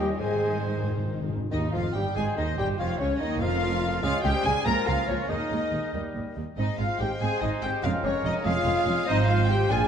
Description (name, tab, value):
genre	quick classical-period movement for symphony orchestra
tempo	95 BPM (dotted quarters)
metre	6/8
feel	rubato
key	Ab major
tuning	A4 = 440 Hz
part	dark studio violin section	melody	0.0-9.9 s	C5 to Bb5	-34 LUFS	left 4 dB	none
part	hollow concert flute	second line	0.0-9.8 s	Db5 to Bb5	-36 LUFS	left 2 dB	none
part	mellow clarinet	second line	0.0-9.9 s	Db4 to D5	-37 LUFS	left 2 dB	none
part	warm oboe	second line	0.0-9.9 s	Eb4 to Eb5	-37 LUFS	equal	none
part	warm studio violin section	second line	0.0-9.8 s	Db4 to Ab5	-38 LUFS	left 2 dB	none
part	warm bassoon	accompaniment	0.0-9.9 s	Db3 to Db4	-37 LUFS	right 1 dB	none
part	warm studio viola section	accompaniment	0.0-9.9 s	Eb3 to Ab4	-35 LUFS	right 2 dB	none
part	warm French horn section	sustained chords	0.0-9.9 s	Db4 to Bb4	-32 LUFS	left 4 dB	none
part	dark studio double bass section	bass	0.0-9.9 s	F1 to Eb2	-31 LUFS	right 3 dB	none
part	warm studio cello section	bass	0.0-9.9 s	Db2 to Ab3	-31 LUFS	right 2 dB	none
part	timpani	percussion	0.2-1.4 s	Ab2	-33 LUFS	left 1 dB	none
part	dark trumpet section	stabs	1.5-9.9 s	Db5 to Bb5	-33 LUFS	right 2 dB	none
room	wet scoring stage reverb, RT60 2.0 s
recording	dark, warm production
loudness	-24 LUFS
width	side -8 dB against mid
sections	0.0-1.5 A section; 1.5-9.9 B section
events	timpani fill 0.2-1.5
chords	0.2 Ab; 2.8 Db/F; 4.0 Db5; 4.7 Bbm/Db; 5.3 Ebsus4; 5.9 Eb; 6.6 Ab; 7.8 Db/F; 9.1 Fm/Ab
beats	| 0.20 0.86 | 1.52 2.16 | 2.79 3.41 | 4.03 4.66 | 5.29 5.93 | 6.58 7.21 | 7.84 8.46 | 9.07 9.71